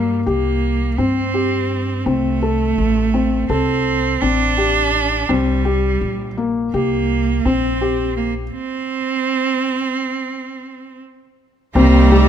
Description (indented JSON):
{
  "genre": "contemporary instrumental, chamber music in an uneven meter",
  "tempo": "167 BPM (eighths)",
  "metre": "9/8",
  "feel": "straight",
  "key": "unclear",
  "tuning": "A4 = 440 Hz",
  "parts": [
    { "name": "clear cello", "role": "melody", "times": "0.0-12.3 s", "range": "G3 to D4", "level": "-19 LUFS", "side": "right 6 dB", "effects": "none" },
    { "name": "felt-muted upright piano", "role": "arpeggios", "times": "0.0-12.3 s", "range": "Bb3 to A4", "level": "-20 LUFS", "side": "left 6 dB", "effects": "none" },
    { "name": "upright bass", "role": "bass", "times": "0.0-12.3 s", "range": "A1 to G2", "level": "-20 LUFS", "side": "equal", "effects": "none" },
    { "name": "rich viola", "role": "second line", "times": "11.8-12.3 s", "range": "G3", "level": "-18 LUFS", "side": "right 2 dB", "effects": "none" },
    { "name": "clear studio string section", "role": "sustained chords", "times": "11.8-12.3 s", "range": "Eb4 to Bb5", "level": "-22 LUFS", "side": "left 2 dB", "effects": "none" }
  ],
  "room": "light reverb",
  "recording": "close, detailed microphones",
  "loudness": "-16 LUFS",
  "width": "side -9 dB against mid",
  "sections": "0.0-11.8 A section",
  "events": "stop 8.5-11.8",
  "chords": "0.0 C5; 2.1 D5; 5.3 Gmadd11/Bb; 8.5 N.C.; 11.8 Cm7",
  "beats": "0.27 0.63 0.99 1.35 1.71 | 2.07 2.42 2.78 3.14 3.50 3.86 4.22 4.58 4.94 | 5.29 5.65 6.01 6.37 6.73 7.09 7.45 7.81 8.17 | 8.53 8.89 9.24 9.60 9.96 10.32 10.68 11.04 11.40 | 11.76 12.12"
}